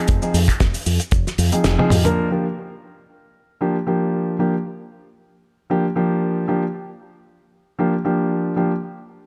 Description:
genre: nu-disco, nu disco.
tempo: 115 BPM.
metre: 4/4.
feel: swing 56% on 16ths.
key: unclear.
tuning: A4 = 438 Hz.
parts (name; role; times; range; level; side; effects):
dark grand piano; accompaniment; 0.0-8.7 s; F3 to Bb4; -22 LUFS; equal; sidechain pumping, tape echo.
fingered electric bass with an envelope filter; bass; 0.1-2.0 s; F1 to F2; -22 LUFS; equal; sidechain pumping.
damped 70s drum kit; drums; 0.1-2.1 s; cabasa, finger snaps, hi-hat, snare drum, toms; -25 LUFS; equal; none.
kick drum; drums; 0.1-1.2 s; none; -20 LUFS; equal; none.
room: light reverb, small room ambience.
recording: none.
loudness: -20 LUFS.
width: mono.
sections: 0.0-2.2 A section; 2.2-9.3 B section.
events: kick drops out 1.6-2.2; band accent 1.6; drum fill 1.8-2.2.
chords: 0.0 Fm7; 2.2 Gm7.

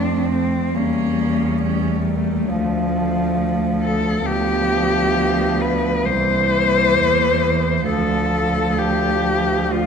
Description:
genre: classical, lyrical piece for cello ensemble.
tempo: 67 BPM.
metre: 4/4.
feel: rubato.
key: unclear.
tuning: A4 = 439 Hz.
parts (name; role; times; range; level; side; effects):
rich cello; melody; 0.0-9.9 s; A3 to C5; -20 LUFS; left 4 dB; none.
warm cello; second line; 0.0-9.9 s; A3 to C#4; -25 LUFS; right 6 dB; none.
rich cello; accompaniment; 0.0-9.9 s; E3 to A3; -24 LUFS; equal; none.
rich cello; bass; 0.0-9.9 s; C2 to F2; -23 LUFS; right 3 dB; none.
room: wet scoring stage reverb, RT60 1.8 s.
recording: minimal, uncompressed stereo recording.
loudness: -16 LUFS.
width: side -6 dB against mid.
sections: 0.0-9.9 A section.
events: none.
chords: 0.0 Dm7; 0.8 A7/E; 2.5 Dm; 6.1 C7; 7.9 Dm.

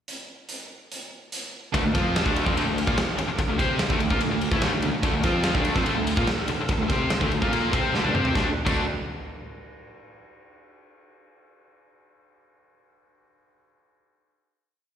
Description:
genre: hard rock.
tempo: 145 BPM.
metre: 4/4.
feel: straight.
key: D minor.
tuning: A4 = 440 Hz.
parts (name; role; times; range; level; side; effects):
big rock drum kit; drums; 0.1-8.8 s; crash cymbal, hi-hat, kick drum, ride cymbal, snare drum, toms; -26 LUFS; equal; none.
tonewheel organ; sustained chords; 1.7-8.6 s; D4 to E6; -37 LUFS; right 1 dB; none.
distorted electric guitar; riff; 1.7-8.8 s; D3 to C5; -30 LUFS; right 10 dB; overdrive, slapback echo.
overdriven electric guitar; riff; 1.7-8.8 s; D3 to C5; -32 LUFS; equal; none.
tight distorted guitar; riff; 1.7-8.8 s; D3 to C5; -28 LUFS; left 8 dB; distortion, slapback echo.
fuzz fingered electric bass; bass; 1.7-8.9 s; D2 to C3; -30 LUFS; equal; overdrive.
room: light reverb.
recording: live gig heard through the venue's PA, recital hall reverb.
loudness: -22 LUFS.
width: side -9 dB against mid.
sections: 0.1-1.7 pickup bar; 1.7-8.3 riff; 8.3-10.0 final chord.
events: drum fill 7.9-8.3.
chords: 0.1 N.C.; 1.7 Dm; 8.3 D5.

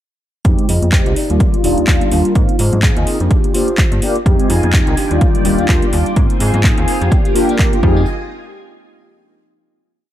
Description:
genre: filtered disco house.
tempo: 126 BPM.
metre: 4/4.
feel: swing 57% on 16ths.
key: F dorian.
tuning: A4 = 440 Hz.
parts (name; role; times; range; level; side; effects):
mellow synth brass; accompaniment; 0.4-8.0 s; G3 to D5; -18 LUFS; left 1 dB; chorus, phaser, sidechain pumping, low-pass filter.
slap-like FM bass; bass; 0.4-8.1 s; Eb1 to Ab2; -17 LUFS; equal; sidechain pumping, low-pass filter.
electronic kick drum; drums; 0.4-7.9 s; none; -14 LUFS; equal; overdrive.
house drum kit; drums; 0.4-7.8 s; handclaps, hi-hat; -22 LUFS; equal; overdrive, sidechain pumping on hats.
tambourine and congas; percussion; 0.5-8.0 s; none; -28 LUFS; left 3 dB; none.
mellow electric guitar; riff; 0.7-8.1 s; Bb3 to Eb5; -22 LUFS; equal; sidechain pumping, low-pass filter.
string machine, full ensemble; sustained chords; 4.3-8.1 s; Eb3 to Ab5; -24 LUFS; equal; ensemble chorus, sidechain pumping, low-pass filter.
room: little or no reverb.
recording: none.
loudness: -11 LUFS.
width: side -12 dB against mid.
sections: 0.5-8.1 groove; 8.1-10.0 final hit.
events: filter sweep 0.5-8.1.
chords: 0.5 Fm7; 1.2 Ebmaj7; 2.4 Ab6; 3.3 Gm7; 4.3 Fm7; 5.0 Ebmaj7; 6.2 Ab6; 7.1 Gm7; 7.8 Fm7; 8.1 N.C..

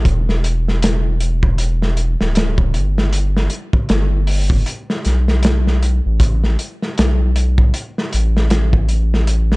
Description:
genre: trip hop.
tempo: 78 BPM.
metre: 4/4.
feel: swing 59% on 16ths.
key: unclear.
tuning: A4 = 440 Hz.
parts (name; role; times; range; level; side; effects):
round analog bass; bass; 0.0-9.6 s; D1 to B1; -15 LUFS; equal; none.
crunchy breakbeat drum kit; drums; 0.1-9.6 s; hi-hat, kick drum, snare drum; -18 LUFS; equal; vintage 12-bit sampler grit.
room: little or no reverb.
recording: dark, warm production, nothing above 10.4 kHz.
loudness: -14 LUFS.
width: side -24 dB against mid.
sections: 0.1-9.6 A section.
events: none.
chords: none.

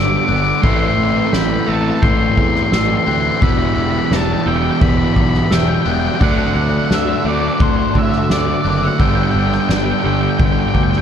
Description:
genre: post-rock.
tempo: 86 BPM.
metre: 4/4.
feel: straight.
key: A dorian.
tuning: A4 = 440 Hz.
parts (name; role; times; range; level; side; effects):
octave-fuzz lead guitar; melody; 0.0-11.0 s; C5 to D6; -20 LUFS; left 2 dB; distortion, digital delay.
hollow soft pad; sustained chords; 0.0-11.0 s; B3 to A5; -30 LUFS; left 1 dB; none.
glockenspiel with rubber mallets; arpeggios; 0.0-11.0 s; D6 to G6; -27 LUFS; right 2 dB; digital delay.
fuzz guitar; riff; 0.0-11.0 s; G2 to E4; -21 LUFS; left 12 dB; distortion.
overdriven semi-hollow guitar; riff; 0.0-11.0 s; E2 to D4; -20 LUFS; right 11 dB; none.
fuzz picked electric bass; bass; 0.0-11.0 s; E1 to A2; -21 LUFS; equal; overdrive.
soft-mallet drum kit; drums; 0.6-11.0 s; crash cymbal, kick drum, snare drum; -19 LUFS; equal; none.
room: small room ambience.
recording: dark, warm production.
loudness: -13 LUFS.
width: side -8 dB against mid.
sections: 0.0-11.0 A section.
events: none.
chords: 0.0 Gmaj7; 0.6 Am7; 3.4 Em; 6.2 D7; 9.0 G.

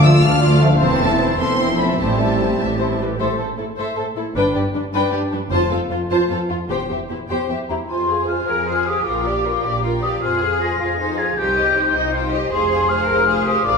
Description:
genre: cinematic, heroic adventure film score.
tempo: 103 BPM (dotted quarters).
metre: 6/8.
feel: straight.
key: A minor, F dorian from 7.9 s.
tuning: A4 = 440 Hz.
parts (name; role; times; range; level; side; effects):
clear symphonic violin section; melody; 0.0-13.8 s; A4 to F6; -28 LUFS; left 1 dB; none.
dark symphonic violin section; second line; 0.0-13.8 s; D4 to F5; -23 LUFS; left 3 dB; none.
rich symphonic viola section; accompaniment; 0.0-13.8 s; F3 to Bb4; -24 LUFS; right 1 dB; none.
warm trombone section; sustained chords; 0.0-3.0 s; E3 to C4; -22 LUFS; right 1 dB; none.
clear symphonic double bass section; bass; 0.0-13.8 s; E1 to F2; -22 LUFS; right 1 dB; none.
rich symphonic cello section; bass; 0.0-13.8 s; D2 to Bb4; -25 LUFS; right 1 dB; none.
hollow concert flute; second line; 7.7-13.8 s; Bb5 to Bb6; -20 LUFS; left 3 dB; none.
room: wet recital hall reverb, RT60 1.5 s.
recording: recorded in a church or concert hall.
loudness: -16 LUFS.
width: side -5 dB against mid.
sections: 0.0-3.2 A section; 3.2-7.9 B section; 7.9-13.8 C section.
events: none.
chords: 0.0 Dm; 0.8 Am/E; 2.0 Am7; 3.2 Am; 4.4 G; 5.5 F; 6.7 C/E; 7.9 Fm; 9.1 Bb6; 10.2 Fm; 11.4 Cm; 12.5 Fm.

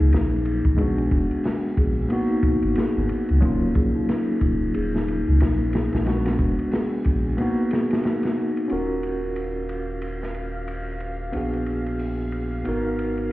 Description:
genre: trip hop.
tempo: 91 BPM.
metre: 4/4.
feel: swing 60% on 16ths.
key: Eb minor.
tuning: A4 = 440 Hz.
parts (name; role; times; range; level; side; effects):
bell-like tine electric piano; accompaniment; 0.0-13.3 s; Gb3 to Bb4; -25 LUFS; equal; tremolo, tape echo.
celesta; arpeggios; 0.0-8.7 s; D4 to Ab4; -28 LUFS; left 1 dB; tape echo.
soft dub sub bass; bass; 0.0-13.3 s; Eb1 to Db2; -25 LUFS; equal; none.
crunchy breakbeat drum kit; drums; 0.1-13.3 s; hi-hat, kick drum, ride cymbal, snare drum; -28 LUFS; equal; high-pass filter on kick, high-pass filter on cymbals, high-pass filter on hats, high-pass filter on snare, high-pass filter on room.
bowed-like drone; texture; 9.2-13.3 s; F5; -39 LUFS; equal; built-in reverb, phaser.
room: small room ambience.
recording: heard muffled through a wall, stone room reverb, vinyl crackle, EQ.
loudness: -21 LUFS.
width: side -17 dB against mid.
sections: 0.0-8.7 A section; 8.7-13.3 B section.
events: none.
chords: 0.0 Ebm9; 0.8 Bb7b9b13; 2.1 Abm9; 3.4 Ebm9; 6.1 Bb7b9b13; 7.4 Abm9; 8.7 Ebm9; 11.3 Bb7b9b13; 12.7 Abm9.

